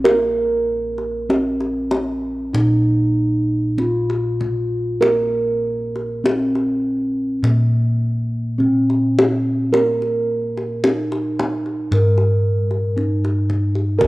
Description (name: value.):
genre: Javanese gamelan.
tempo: 48-59 BPM.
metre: 4/4.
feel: straight.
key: Bb slendro.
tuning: A4 = 440 Hz.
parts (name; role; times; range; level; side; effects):
gamelan-type bronze metallophone; melody; 0.0-14.1 s; Bb3 to Bb4; -21 LUFS; equal; none.
gamelan-type bossed gongs; bass; 0.0-14.1 s; Bb1 to Bb4; -19 LUFS; right 1 dB; none.
kendang; percussion; 0.1-14.1 s; none; -22 LUFS; left 2 dB; none.
room: light reverb.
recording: home recording on cassette.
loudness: -17 LUFS.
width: side -19 dB against mid.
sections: 0.0-14.0 A section.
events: none.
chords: none.